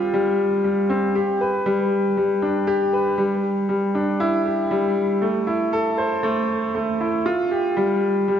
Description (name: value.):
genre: electronica.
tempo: 118 BPM.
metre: 4/4.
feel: straight.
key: unclear.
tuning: A4 = 444 Hz.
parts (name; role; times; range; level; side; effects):
bright baby grand piano; solo; 0.0-8.4 s; G3 to C5; -19 LUFS; equal; none.
room: wet concert hall reverb, RT60 2.2 s.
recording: nothing above 7.5 kHz.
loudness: -19 LUFS.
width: side -8 dB against mid.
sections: 0.0-8.4 A section.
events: none.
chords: none.